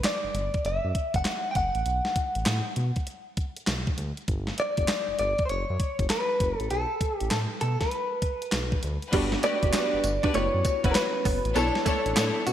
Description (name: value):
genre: R&B, new jack swing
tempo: 99 BPM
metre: 4/4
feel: swing 65% on 16ths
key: B minor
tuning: A4 = 440 Hz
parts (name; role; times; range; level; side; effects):
- direct-recorded clean electric guitar; melody; 0.0-12.5 s; F#4 to G5; -28 LUFS; equal; lush chorus
- clean 12-bit digital drum machine; drums; 0.0-12.5 s; crash cymbal, handclaps, hi-hat, kick drum, snare drum, tambourine; -28 LUFS; equal; gated reverb
- smooth synth bass; bass; 0.2-12.5 s; F#1 to B2; -30 LUFS; equal; none
- FM electric piano with soft pad layer; accompaniment; 9.1-12.5 s; B3 to D5; -32 LUFS; left 2 dB; chorus
- direct-recorded clean electric guitar; riff; 9.1-12.5 s; G3 to D4; -33 LUFS; right 6 dB; ensemble chorus
- warm studio string section; stabs; 9.1-12.4 s; C#4 to C#5; -31 LUFS; left 3 dB; none
- cowbell; percussion; 9.1-12.3 s; none; barely audible; none; none
room: moderate lush hall reverb, RT60 2.0 s, digital ambience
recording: bright 1980s-style digital production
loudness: -24 LUFS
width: side -10 dB against mid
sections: 0.0-9.1 A section; 9.1-12.5 B section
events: none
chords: 0.0 G5; 0.6 F#7(no3); 1.9 B7(no3); 4.3 G5; 5.5 F#sus4; 6.7 B7(no3); 9.1 Gmaj7; 10.3 F#7sus4; 11.6 Bm11